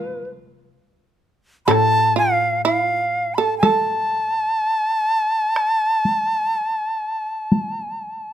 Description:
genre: japanese traditional, Japanese chamber music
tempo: 62 BPM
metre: 4/4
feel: rubato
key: A hirajoshi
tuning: A4 = 440 Hz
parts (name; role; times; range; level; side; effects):
- bright reedy shakuhachi; melody; 0.0-8.3 s; B4 to B5; -19 LUFS; equal; none
- shamisen; second line; 0.0-8.3 s; F4 to A4; -21 LUFS; right 7 dB; none
- koto; accompaniment; 0.0-4.6 s; A2 to C3; -24 LUFS; left 5 dB; none
- solo taiko drums; percussion; 1.7-7.8 s; none; -22 LUFS; left 1 dB; none
room: light reverb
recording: close, detailed microphones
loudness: -17 LUFS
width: side -10 dB against mid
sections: 0.0-8.3 A section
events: none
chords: none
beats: 0.75 | 1.70 2.65 3.60 4.57 | 5.55 6.53 7.53

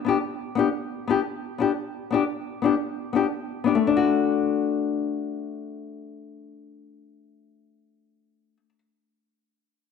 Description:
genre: highlife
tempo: 116 BPM (dotted quarters)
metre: 12/8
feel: straight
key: D major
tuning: A4 = 439 Hz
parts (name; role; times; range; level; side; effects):
- nylon-string guitar; solo; 0.0-8.8 s; A3 to G4; -23 LUFS; left 6 dB; none
room: wet echo chamber reverb, RT60 1.8 s, studio reverb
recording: none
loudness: -22 LUFS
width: side -6 dB against mid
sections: 0.0-3.8 A section; 3.8-8.0 B section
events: none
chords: 0.0 G; 3.8 D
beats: 0.22 0.74 1.25 | 1.77 2.28 2.80 3.31 | 3.83 4.34 4.86 5.38 | 5.89 6.41 6.92 7.44

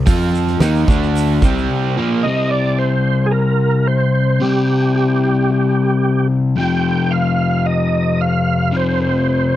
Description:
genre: classic rock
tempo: 111 BPM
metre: 4/4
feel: straight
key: C minor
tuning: A4 = 439 Hz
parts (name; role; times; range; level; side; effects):
- crunchy overdriven guitar; riff; 0.0-9.6 s; F2 to F4; -16 LUFS; left 3 dB; phaser
- overdriven electric guitar; riff; 0.0-2.2 s; Bb2 to F4; -21 LUFS; right 11 dB; none
- modern bright fingered electric bass; bass; 0.0-1.7 s; C2 to F2; -18 LUFS; right 1 dB; none
- huge arena drum kit; drums; 0.1-1.5 s; hi-hat, kick drum, snare drum; -17 LUFS; right 1 dB; none
- tube shaker; percussion; 0.1-1.6 s; none; -38 LUFS; left 1 dB; none
- overdriven tonewheel organ; melody; 2.2-9.6 s; G4 to G5; -19 LUFS; right 3 dB; slow rotary speaker, chorus vibrato, slapback echo
room: little or no reverb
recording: dry, close 1970s-style studio recording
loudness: -14 LUFS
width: side -13 dB against mid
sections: 0.0-2.2 A section; 2.2-9.6 B section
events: break 1.7-2.2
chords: 0.1 F5; 0.6 Eb5; 0.9 D5; 1.4 C5; 6.6 F5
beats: | 0.07 0.61 1.15 1.70 | 2.24 2.78 3.32 3.86 | 4.40 4.95 5.49 6.03 | 6.57 7.11 7.66 8.20 | 8.74 9.29

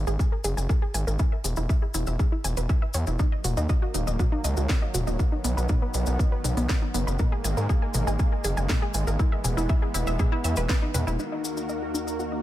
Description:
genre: melodic techno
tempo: 120 BPM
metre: 4/4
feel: straight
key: Eb phrygian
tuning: A4 = 435 Hz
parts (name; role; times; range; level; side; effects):
- wide unison pluck; arpeggios; 0.0-12.4 s; B3 to Ab5; -32 LUFS; equal; sidechain pumping, ping-pong delay
- gritty driven synth bass; bass; 0.0-11.2 s; Eb1 to Ab2; -26 LUFS; equal; sidechain pumping
- cabasa; percussion; 0.1-12.3 s; none; -37 LUFS; left 6 dB; none
- electronic kick drum; drums; 0.2-10.8 s; none; -24 LUFS; equal; none
- house drum kit; drums; 0.4-11.3 s; crash cymbal, hi-hat, snare drum, toms; -32 LUFS; left 1 dB; low-pass filter on hats, low-pass filter on toms, low-pass filter on snare, low-pass filter on cymbals
- lush unison pad; sustained chords; 3.2-12.4 s; Eb2 to Bb4; -34 LUFS; right 1 dB; chorus, sidechain pumping
- expressive synth lead; melody; 11.2-12.4 s; Bb3 to Eb4; -32 LUFS; left 7 dB; lush chorus, sidechain pumping
room: digital ambience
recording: none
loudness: -23 LUFS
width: side -14 dB against mid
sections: 0.0-11.2 A section; 11.2-12.4 B section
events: filter sweep on synth arpeggio sound 0.0-11.2, 11.2-12.4; filter sweep on analog synth lead 11.2-12.4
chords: 0.0 Absus2; 1.2 E; 3.2 Ebm; 5.2 B; 7.2 Absus2; 9.2 E; 11.2 Ebm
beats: 0.19 0.69 | 1.19 1.69 2.19 2.69 | 3.19 3.69 4.19 4.69 | 5.19 5.69 6.19 6.69 | 7.19 7.69 8.19 8.69 | 9.19 9.69 10.19 10.69 | 11.19 11.69 12.19

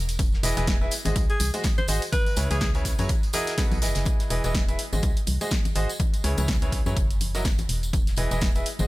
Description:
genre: piano house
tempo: 124 BPM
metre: 4/4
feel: swing 57% on 16ths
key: E major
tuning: A4 = 438 Hz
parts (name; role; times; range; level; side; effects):
- organ-like FM bass; bass; 0.0-8.9 s; E1 to F#2; -27 LUFS; equal; sidechain pumping
- punchy analog drum machine; drums; 0.1-8.8 s; hi-hat, snare drum, tambourine; -32 LUFS; right 1 dB; overdrive
- tambourine and congas; percussion; 0.1-8.9 s; none; -35 LUFS; left 4 dB; none
- damped 70s drum kit; drums; 0.2-8.9 s; hi-hat, snare drum; -40 LUFS; left 4 dB; none
- electronic kick drum; drums; 0.2-8.5 s; none; -25 LUFS; equal; none
- clear baby grand piano; riff; 0.4-8.9 s; B2 to E5; -31 LUFS; right 1 dB; sidechain pumping, dub echo
- clear alto saxophone; melody; 1.3-3.6 s; G#4 to B#4; -33 LUFS; equal; dub echo
room: small room ambience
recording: none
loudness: -22 LUFS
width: side -19 dB against mid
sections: 0.0-4.1 A section; 4.1-8.9 B section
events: drop 0.0-4.1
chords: 0.2 Emaj7; 0.9 G#7; 2.1 C#m7; 3.1 F#7; 3.6 B7; 4.1 Emaj7; 4.8 G#7; 6.0 C#m7; 7.0 F#7(no3); 7.9 Emaj7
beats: | 0.19 0.68 1.16 1.64 | 2.13 2.61 3.10 3.58 | 4.06 4.55 5.03 5.51 | 6.00 6.48 6.97 7.45 | 7.93 8.42

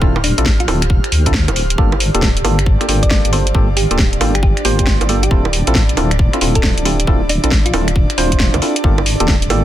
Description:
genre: UK garage, two-step garage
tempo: 136 BPM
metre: 4/4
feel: swing 64% on 16ths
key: G minor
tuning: A4 = 444 Hz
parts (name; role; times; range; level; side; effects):
- airy breathy pad; sustained chords; 0.0-9.6 s; D5 to F6; -29 LUFS; left 2 dB; chorus, sidechain pumping
- percussive organ stab; stabs; 0.0-9.6 s; Bb3 to C5; -20 LUFS; equal; chorus, dub echo
- deep soft wobble bass; bass; 0.0-9.6 s; D1 to D2; -17 LUFS; equal; chorus
- electronic kick drum; drums; 0.0-9.4 s; none; -15 LUFS; equal; none
- ethereal airy pad; texture; 0.0-9.6 s; D4 to F5; -26 LUFS; right 2 dB; ensemble chorus, built-in reverb, sidechain pumping
- thumb-piano-like synth pluck; melody; 0.2-7.8 s; D4 to D5; -24 LUFS; equal; chorus, dub echo
- garage drum kit; drums; 0.2-9.6 s; bongos, finger snaps, hi-hat, snare drum; -19 LUFS; right 1 dB; none
room: little or no reverb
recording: dense, heavily limited modern master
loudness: -12 LUFS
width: side -12 dB against mid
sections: 0.0-9.6 A section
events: none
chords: 0.0 Dm9; 1.8 Gm9; 5.3 Dm9; 8.8 Gm9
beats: | 0.02 0.46 0.90 1.34 | 1.78 2.22 2.66 3.10 | 3.55 3.99 4.43 4.87 | 5.31 5.75 6.19 6.63 | 7.08 7.52 7.96 8.40 | 8.84 9.28

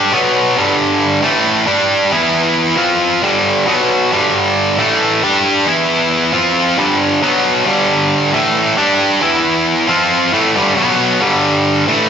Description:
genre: rock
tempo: 135 BPM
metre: 4/4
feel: straight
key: G mixolydian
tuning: A4 = 439 Hz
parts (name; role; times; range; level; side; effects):
- distorted electric guitar; solo; 0.0-12.1 s; G2 to G4; -11 LUFS; equal; overdrive, slapback echo
room: wet scoring stage reverb, RT60 1.9 s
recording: big arena sound, nothing above 7.8 kHz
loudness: -11 LUFS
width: side -7 dB against mid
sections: 0.6-12.1 A section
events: none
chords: 0.1 B5; 0.6 G5; 1.2 A5; 1.7 G5; 2.1 E5; 2.8 F5; 3.2 G5; 3.7 B5; 4.1 G5; 4.8 A5; 5.2 G5; 5.7 E5; 6.3 F5; 6.8 G5; 7.2 B5; 7.7 G5; 8.3 A5; 8.8 G5; 9.2 E5; 9.9 F5; 10.3 G5; 10.8 B5; 11.2 G5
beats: 0.12 | 0.57 1.01 1.45 1.90 | 2.34 2.78 3.23 3.67 | 4.11 4.56 5.00 5.44 | 5.89 6.33 6.78 7.22 | 7.66 8.11 8.55 8.99 | 9.44 9.88 10.33 10.77 | 11.21 11.66

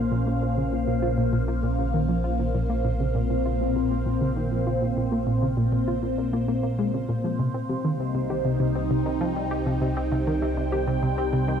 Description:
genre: ambient, sequencer-driven space music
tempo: 99 BPM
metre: 4/4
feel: straight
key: Bb dorian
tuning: A4 = 440 Hz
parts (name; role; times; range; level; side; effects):
- phased analog pad; sustained chords; 0.0-11.6 s; Bb2 to G5; -25 LUFS; equal; phaser, chorus
- analog pluck; riff; 0.0-11.6 s; Bb2 to G4; -27 LUFS; equal; chorus, ping-pong delay
- analog drone; bass; 0.0-11.6 s; Bb1 to C2; -30 LUFS; equal; chorus
room: moderate plate reverb, RT60 2.9 s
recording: dark, warm production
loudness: -22 LUFS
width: side -8 dB against mid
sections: 0.0-11.6 A section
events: filter sweep on synth arpeggio sound 0.0-11.6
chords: 0.0 Bbmadd9; 7.4 Cm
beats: | 0.12 0.73 1.33 1.94 | 2.54 3.15 3.76 4.36 | 4.97 5.57 6.18 6.79 | 7.39 8.00 8.61 9.21 | 9.82 10.42 11.03

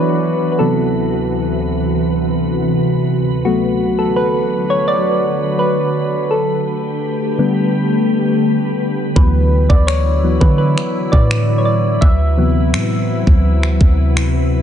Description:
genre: contemporary R&B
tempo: 84 BPM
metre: 4/4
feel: straight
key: D major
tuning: A4 = 441 Hz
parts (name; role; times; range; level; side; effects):
- soft electric-piano-like synth keys; accompaniment; 0.0-14.6 s; C3 to E5; -18 LUFS; left 1 dB; chorus
- glassy FM pad; sustained chords; 0.0-14.6 s; D2 to B4; -18 LUFS; equal; ensemble chorus, built-in reverb
- clean 808-style bass; bass; 9.2-14.6 s; D2 to D3; -15 LUFS; equal; none
- trap drum kit; drums; 9.2-14.3 s; finger snaps, kick drum; -14 LUFS; equal; none
room: light reverb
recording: nothing above 10.4 kHz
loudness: -13 LUFS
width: side -9 dB against mid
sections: 0.0-14.6 A section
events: synth keys solo 0.0-14.6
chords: 0.0 D69; 0.6 D13; 3.5 D6; 6.3 A9sus4; 9.2 D69; 12.0 D13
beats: | 0.59 1.31 2.02 2.74 | 3.45 4.17 4.88 5.59 | 6.31 7.02 7.74 8.45 | 9.16 9.88 10.59 11.31 | 12.02 12.74 13.45 14.16

